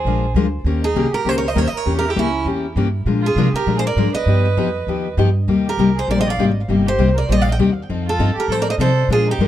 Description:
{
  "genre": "acoustic string swing (jazz manouche)",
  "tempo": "199 BPM",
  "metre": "4/4",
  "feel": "swing 57% on 8ths",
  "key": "unclear",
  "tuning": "A4 = 440 Hz",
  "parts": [
    { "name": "picked steel-string acoustic guitar", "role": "melody", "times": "0.0-9.5 s", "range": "E4 to G5", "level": "-22 LUFS", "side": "right 1 dB", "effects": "tape echo" },
    { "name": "warm violin", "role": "second line", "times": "0.0-9.5 s", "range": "C#4 to Eb5", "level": "-26 LUFS", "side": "right 7 dB", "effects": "none" },
    { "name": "upright bass", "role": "bass", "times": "0.0-9.5 s", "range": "G1 to C3", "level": "-20 LUFS", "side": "right 1 dB", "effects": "none" },
    { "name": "picked steel-string acoustic guitar", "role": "accompaniment", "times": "0.1-9.5 s", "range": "C3 to Bb4", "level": "-19 LUFS", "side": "left 5 dB", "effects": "none" }
  ],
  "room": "light reverb",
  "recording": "dark, warm production",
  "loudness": "-15 LUFS",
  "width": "side -12 dB against mid",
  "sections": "0.0-9.5 A section",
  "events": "none",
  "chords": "0.0 Bb7; 0.7 Eb7; 1.9 Edim7; 3.1 Bb7; 4.3 Gaug7; 5.5 Cm7; 7.9 F7"
}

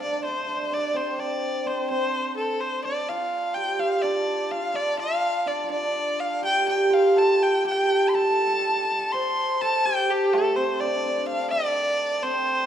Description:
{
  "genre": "chinese traditional, Chinese chamber ensemble",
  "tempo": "62 BPM",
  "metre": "2/4",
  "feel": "rubato",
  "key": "G shang mode",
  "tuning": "A4 = 440 Hz",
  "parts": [
    { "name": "rich erhu", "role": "melody", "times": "0.0-12.7 s", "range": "G4 to C6", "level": "-24 LUFS", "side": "equal", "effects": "none" },
    { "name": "hammered dulcimer", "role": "second line", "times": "0.0-12.7 s", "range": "A3 to C5", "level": "-24 LUFS", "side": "right 1 dB", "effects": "none" }
  ],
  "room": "wet scoring stage reverb, RT60 1.7 s",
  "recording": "minimal, uncompressed stereo recording",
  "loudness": "-21 LUFS",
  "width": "side -9 dB against mid",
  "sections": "0.0-12.7 A section",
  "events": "none",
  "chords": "none"
}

